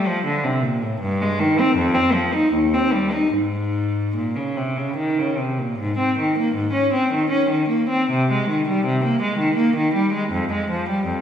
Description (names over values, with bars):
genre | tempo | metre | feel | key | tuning
classical, baroque-style suite movement for unaccompanied cello | 72-84 BPM | 3/4 | rubato | Ab major | A4 = 439 Hz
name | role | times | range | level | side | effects
rich cello | solo | 0.0-11.2 s | Eb2 to Eb4 | -18 LUFS | equal | none
room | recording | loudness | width
wet recital hall reverb, RT60 1.4 s | recorded in a church or concert hall | -18 LUFS | side -8 dB against mid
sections
0.0-5.8 A section; 5.8-11.2 B section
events
none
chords
none